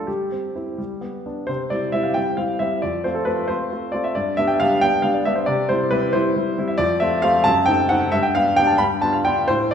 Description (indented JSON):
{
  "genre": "classical-period piano sonatina",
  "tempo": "90 BPM (dotted quarters)",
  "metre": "6/8",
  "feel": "rubato",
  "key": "C major",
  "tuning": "A4 = 439 Hz",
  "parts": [
    { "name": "clear grand piano", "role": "solo", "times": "0.0-9.7 s", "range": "F2 to B5", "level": "-18 LUFS", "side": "equal", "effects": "none" }
  ],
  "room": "wet recital hall reverb, RT60 1.5 s",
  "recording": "heard from further back in the room",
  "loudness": "-18 LUFS",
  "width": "side -8 dB against mid",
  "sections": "0.0-1.5 A section; 1.5-9.7 B section",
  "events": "none",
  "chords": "0.1 C/G; 0.8 G; 1.5 C; 2.8 F; 4.2 G; 5.5 C; 6.8 F; 7.5 F#dim7; 8.1 G; 8.8 G7",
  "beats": "| 0.08 0.79 | 1.49 2.16 | 2.83 3.49 | 4.16 4.82 | 5.48 6.14 | 6.80 7.46 | 8.13 8.80 | 9.47"
}